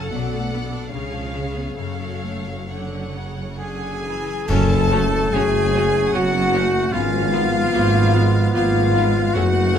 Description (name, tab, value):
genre	classical, slow romantic movement for symphony orchestra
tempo	65-77 BPM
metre	3/4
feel	rubato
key	F# minor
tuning	A4 = 439 Hz
part	rich chamber violin section	melody	0.0-9.8 s	C#5 to F#5	-36 LUFS	left 3 dB	none
part	rich chamber violin section	second line	0.0-9.8 s	C#5 to A5	-30 LUFS	left 2 dB	none
part	rich chamber viola section	accompaniment	0.0-9.8 s	C#3 to A4	-31 LUFS	right 2 dB	none
part	concert harp	arpeggios	0.0-9.8 s	F#2 to B4	-29 LUFS	left 8 dB	none
part	dark studio cello section	bass	0.0-9.8 s	F#2 to C#3	-26 LUFS	right 2 dB	none
part	rich studio double bass section	bass	0.0-9.8 s	F#1 to C#2	-25 LUFS	right 4 dB	none
part	large flute ensemble	second line	3.6-9.8 s	F5 to A5	-28 LUFS	left 4 dB	none
part	warm oboe	second line	3.6-9.8 s	F4 to A4	-28 LUFS	right 2 dB	none
part	mellow French horn section	sustained chords	3.6-9.8 s	F4 to A4	-22 LUFS	left 5 dB	none
part	warm clarinet	second line	4.5-9.8 s	Ab3 to C#4	-28 LUFS	left 1 dB	none
part	warm trombone section	sustained chords	4.5-9.8 s	C#3 to C#4	-28 LUFS	right 5 dB	none
part	mellow tuba	bass	4.5-9.8 s	F#1 to Ab1	-27 LUFS	right 4 dB	none
part	clash cymbals and concert bass drum	percussion	4.5-6.1 s	none	-29 LUFS	right 1 dB	none
room	moderate recital hall reverb, RT60 1.6 s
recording	close, detailed microphones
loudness	-17 LUFS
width	side -8 dB against mid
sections	0.0-4.5 A section; 4.5-9.8 A section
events	band accent 4.5-5.3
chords	0.1 Bm7; 0.9 C#7; 1.8 F#m; 6.9 Fdim/Ab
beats	0.12 0.92 | 1.78 2.69 3.59 | 4.48 5.33 6.13 | 6.93 7.72 8.54 | 9.34